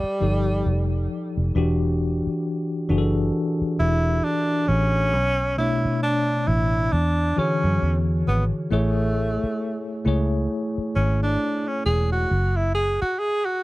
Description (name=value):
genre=R&B, neo-soul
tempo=67 BPM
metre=4/4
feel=swing 59% on 16ths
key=unclear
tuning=A4 = 440 Hz
part: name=breathy tenor saxophone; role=melody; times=0.0-13.6 s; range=G3 to G#4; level=-24 LUFS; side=right 1 dB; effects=none
part: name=vintage muted fingered electric bass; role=bass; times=0.0-13.1 s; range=E1 to F#2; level=-22 LUFS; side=equal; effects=none
part: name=bell-like tine electric piano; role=accompaniment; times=0.2-12.3 s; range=B2 to C#5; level=-25 LUFS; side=left 1 dB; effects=medium stereo tremolo
room=little or no reverb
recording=dry, close 1970s-style studio recording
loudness=-20 LUFS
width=side -19 dB against mid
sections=0.0-13.6 A section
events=tenor saxophone solo 0.0-13.6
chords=0.0 F9; 1.5 Em9; 5.1 Bm9; 6.9 E13; 8.7 Amaj7; 12.3 N.C.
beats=0.65 | 1.54 2.44 3.33 4.23 | 5.13 6.02 6.92 7.81 | 8.71 9.60 10.50 11.39 | 12.29 13.19